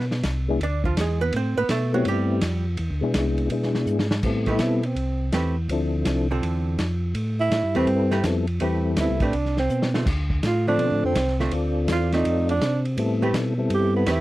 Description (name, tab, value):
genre	soul jazz organ trio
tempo	165 BPM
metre	4/4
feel	swing 65% on 8ths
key	A minor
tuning	A4 = 439 Hz
part	archtop guitar, miked and amplified	accompaniment	0.0-14.2 s	D3 to D5	-26 LUFS	right 3 dB	none
part	tonewheel organ	bass	0.0-14.2 s	C2 to C3	-24 LUFS	equal	stopped rotary speaker
part	vintage drum kit	drums	0.0-14.2 s	crash cymbal, hi-hat, kick drum, ride cymbal, snare drum	-29 LUFS	equal	none
part	percussive tonewheel organ	melody	0.5-14.1 s	F3 to D5	-24 LUFS	left 3 dB	slow rotary speaker, chorus vibrato
part	breathy tenor saxophone	melody	4.5-14.2 s	B3 to G4	-24 LUFS	right 3 dB	none
room	little or no reverb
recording	dry, close 1970s-style studio recording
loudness	-21 LUFS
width	side -17 dB against mid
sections	0.0-4.2 A section; 4.2-14.2 A section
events	hollow-body jazz guitar solo 0.0-4.2; drum fill 3.9-4.2, 9.7-10.1; tenor saxophone solo 4.2-14.2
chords	0.0 E7; 1.3 Am9; 2.8 E7; 4.2 Am9; 5.7 Dm7; 7.2 Am9; 10.1 Dm7; 13.0 Am9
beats	0.24 0.60 0.97 | 1.33 1.69 2.06 2.42 | 2.78 3.15 3.51 3.88 | 4.24 4.60 4.97 5.33 | 5.70 6.06 6.42 6.79 | 7.15 7.52 7.88 8.24 | 8.61 8.97 9.34 9.70 | 10.07 10.43 10.80 11.16 | 11.52 11.89 12.25 12.62 | 12.98 13.35 13.71 14.07